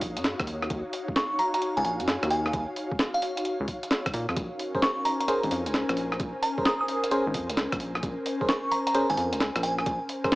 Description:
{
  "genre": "UK garage, two-step garage",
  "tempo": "131 BPM",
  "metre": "4/4",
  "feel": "swing 66% on 16ths",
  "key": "Bb minor",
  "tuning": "A4 = 440 Hz",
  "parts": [
    { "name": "rubbery square bass", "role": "bass", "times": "0.0-10.0 s", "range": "Ab1 to Bb2", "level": "-32 LUFS", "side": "equal", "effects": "none" },
    { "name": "breakbeat sampler-style drum kit", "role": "drums", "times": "0.0-10.4 s", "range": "hi-hat, rim click, snare drum", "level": "-29 LUFS", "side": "equal", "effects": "studio reverb" },
    { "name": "electronic kick drum", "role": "drums", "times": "0.0-10.3 s", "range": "none", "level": "-34 LUFS", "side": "equal", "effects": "overdrive, studio reverb" },
    { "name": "ethereal airy pad", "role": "texture", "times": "0.0-10.4 s", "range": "Db4 to Ab5", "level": "-32 LUFS", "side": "left 1 dB", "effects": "ensemble chorus, built-in reverb, sidechain pumping" },
    { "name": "glassy synth bell", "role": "melody", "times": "1.2-9.8 s", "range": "F5 to Eb6", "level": "-29 LUFS", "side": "right 1 dB", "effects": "chorus, dub echo" },
    { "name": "FM electric piano", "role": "stabs", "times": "4.7-10.4 s", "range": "Db4 to C5", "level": "-29 LUFS", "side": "equal", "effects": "chorus" }
  ],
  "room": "light reverb",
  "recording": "small speaker sound",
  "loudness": "-25 LUFS",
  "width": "side -20 dB against mid",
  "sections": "0.0-10.4 A section",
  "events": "none",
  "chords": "0.0 Ebm9; 4.1 Bbm9",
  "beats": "0.24 | 0.70 1.16 1.62 2.08 | 2.53 2.99 3.45 3.91 | 4.37 4.82 5.28 5.74 | 6.20 6.66 7.11 7.57 | 8.03 8.49 8.95 9.40 | 9.86 10.32"
}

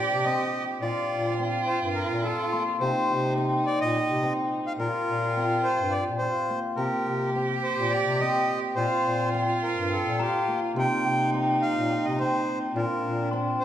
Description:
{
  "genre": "contemporary instrumental, chamber music in an uneven meter",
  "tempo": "211 BPM (eighths)",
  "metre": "7/8",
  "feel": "straight",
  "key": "Bb major",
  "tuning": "A4 = 436 Hz",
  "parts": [
    { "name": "accordion", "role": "melody", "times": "0.0-13.6 s", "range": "G4 to G5", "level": "-29 LUFS", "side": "equal", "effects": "none" },
    { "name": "rich cello", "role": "second line", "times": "0.0-13.6 s", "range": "D4 to G4", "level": "-31 LUFS", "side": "right 4 dB", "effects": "none" },
    { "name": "cimbalom", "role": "arpeggios", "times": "0.0-13.6 s", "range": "Bb3 to G4", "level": "-28 LUFS", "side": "equal", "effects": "none" },
    { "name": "warm bass clarinet", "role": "bass", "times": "0.0-13.6 s", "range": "G2 to C3", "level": "-31 LUFS", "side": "left 2 dB", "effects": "none" },
    { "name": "glockenspiel with soft plastic mallets", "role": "texture", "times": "0.0-3.1, 10.2-13.6 s", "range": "Bb5 to D6", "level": "-38 LUFS", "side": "left 6 dB", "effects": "none" }
  ],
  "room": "wet recital hall reverb, RT60 1.4 s",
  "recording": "none",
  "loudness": "-24 LUFS",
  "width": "side -10 dB against mid",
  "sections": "0.0-13.6 A section",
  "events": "none",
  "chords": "0.0 C5; 0.8 Bbadd9; 2.8 Cm7; 4.8 Bbsus2; 6.8 C5; 8.8 Bbsus2; 10.8 Cm7",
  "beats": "0.25 0.54 | 0.82 1.11 1.39 1.67 1.96 2.24 2.52 | 2.81 3.09 3.38 3.66 3.94 4.23 4.51 | 4.80 5.08 5.37 5.65 5.93 6.22 6.50 | 6.79 7.07 7.35 7.64 7.92 8.21 8.49 | 8.77 9.06 9.34 9.63 9.91 10.20 10.48 | 10.76 11.05 11.33 11.62 11.90 12.19 12.47 | 12.76 13.04 13.32 13.61"
}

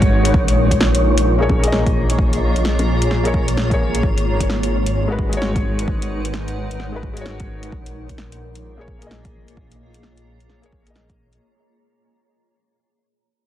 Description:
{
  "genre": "future garage",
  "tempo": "130 BPM",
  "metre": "4/4",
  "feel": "swing 61% on 16ths",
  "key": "Bb phrygian",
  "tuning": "A4 = 441 Hz",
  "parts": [
    { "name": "felt-muted upright piano", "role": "accompaniment", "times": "0.0-11.4 s", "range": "Ab3 to Eb5", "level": "-26 LUFS", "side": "left 3 dB", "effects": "sidechain pumping, analog delay" },
    { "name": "granular cloud pad", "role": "sustained chords", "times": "0.0-11.4 s", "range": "Ab3 to Bb5", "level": "-25 LUFS", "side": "left 1 dB", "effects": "built-in reverb, vintage 12-bit sampler grit, sidechain pumping" },
    { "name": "swelling detuned saw bass", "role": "bass", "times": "0.0-11.4 s", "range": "Ab1 to Bb1", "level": "-21 LUFS", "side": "equal", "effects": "sidechain pumping" },
    { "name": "deep house drum kit", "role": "drums", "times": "0.0-11.4 s", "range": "bongos, hi-hat, snare drum", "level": "-24 LUFS", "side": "equal", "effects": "overdrive, vintage 12-bit sampler grit, studio reverb" },
    { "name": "electronic kick drum", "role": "drums", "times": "0.0-11.2 s", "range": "none", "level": "-20 LUFS", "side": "equal", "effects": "overdrive, vintage 12-bit sampler grit, studio reverb" },
    { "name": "wind-like tuned noise texture", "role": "texture", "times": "0.0-11.4 s", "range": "Db5", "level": "-26 LUFS", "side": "right 1 dB", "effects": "built-in reverb" }
  ],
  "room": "light reverb, digital ambience",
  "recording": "dense, heavily limited modern master",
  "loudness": "-16 LUFS",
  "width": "side -12 dB against mid",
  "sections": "0.0-11.4 A section",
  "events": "fade-out 0.0-11.4; filter sweep on detuned saw bass 0.0-11.4",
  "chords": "0.3 Bbm7; 4.0 Abm7; 7.7 Bbm7",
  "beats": "| 0.34 0.80 1.26 1.72 | 2.18 2.65 3.11 3.57 | 4.03 4.49 4.95 5.42 | 5.88 6.34 6.80 7.26 | 7.72 8.18 8.65 9.11 | 9.57 10.03 10.49 10.95"
}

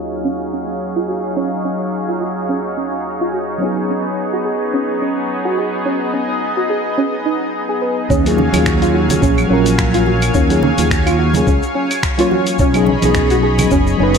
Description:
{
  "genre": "sunset chillout",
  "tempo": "107 BPM",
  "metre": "4/4",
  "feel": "swing 56% on 16ths",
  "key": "Eb minor",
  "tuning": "A4 = 440 Hz",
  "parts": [
    { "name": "mellow FM electric piano", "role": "accompaniment", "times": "0.0-14.2 s", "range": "Eb2 to Db5", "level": "-20 LUFS", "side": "equal", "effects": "chorus, auto-pan, tape echo" },
    { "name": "lush unison pad", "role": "sustained chords", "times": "0.0-14.2 s", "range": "Gb3 to B5", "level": "-21 LUFS", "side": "left 1 dB", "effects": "chorus" },
    { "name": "soft round pluck", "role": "arpeggios", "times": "0.0-14.1 s", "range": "Db4 to B4", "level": "-20 LUFS", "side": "right 2 dB", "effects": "ensemble chorus, tape echo" },
    { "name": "fretless electric bass", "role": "bass", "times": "8.1-14.2 s", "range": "F#1 to Eb2", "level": "-17 LUFS", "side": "equal", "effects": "tube saturation, ensemble chorus" },
    { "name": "dusty soul sampler-style drum kit", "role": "drums", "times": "8.1-14.2 s", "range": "claves, finger snaps, hi-hat, shaker", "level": "-23 LUFS", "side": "equal", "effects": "low-pass filter on perc, studio ambience, low-pass filter on hats, low-pass filter on snare" },
    { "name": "electronic kick drum", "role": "drums", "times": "8.1-13.8 s", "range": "none", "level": "-18 LUFS", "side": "equal", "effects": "studio ambience" },
    { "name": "congas", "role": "percussion", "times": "8.4-13.7 s", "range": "none", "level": "-23 LUFS", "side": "right 3 dB", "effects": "none" }
  ],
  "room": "moderate lush hall reverb, RT60 2.1 s",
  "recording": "low-pass filter",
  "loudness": "-14 LUFS",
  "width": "side -6 dB against mid",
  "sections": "0.0-8.1 A section; 8.1-14.2 B section",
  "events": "filter sweep on synth pluck 0.0-8.1; filter sweep 0.0-8.1",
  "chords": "0.0 Ebm11; 3.6 B69; 8.1 Ebm11; 12.6 B69",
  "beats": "0.25 0.81 | 1.38 1.94 2.50 3.06 | 3.62 4.18 4.74 5.30 | 5.86 6.42 6.98 7.54 | 8.10 8.66 9.23 9.79 | 10.35 10.91 11.47 12.03 | 12.59 13.15 13.71"
}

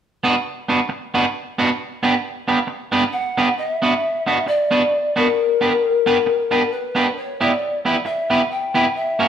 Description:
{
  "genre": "ska",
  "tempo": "134 BPM",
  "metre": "4/4",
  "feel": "swing 56% on 8ths",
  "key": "B harmonic minor",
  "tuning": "A4 = 440 Hz",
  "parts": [
    { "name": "electric guitar at the edge of break-up", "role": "accompaniment", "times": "0.2-9.3 s", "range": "A#3 to B4", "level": "-19 LUFS", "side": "right 2 dB", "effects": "none" },
    { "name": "mellow hollow pan flute", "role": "melody", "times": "3.1-9.3 s", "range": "A#4 to G5", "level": "-19 LUFS", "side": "left 3 dB", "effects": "analog delay" }
  ],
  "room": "moderate stone room reverb, RT60 1.2 s",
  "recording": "band playing live in one room",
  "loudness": "-17 LUFS",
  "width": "side -9 dB against mid",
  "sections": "0.0-3.6 A section; 3.6-9.3 B section",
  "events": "none",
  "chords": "0.0 Bm; 1.8 G; 3.6 Bm; 5.4 G; 7.2 Em",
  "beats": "0.44 0.88 1.33 | 1.78 2.23 2.67 3.12 | 3.57 4.02 4.47 4.91 | 5.36 5.81 6.26 6.71 | 7.15 7.60 8.05 8.49 | 8.94"
}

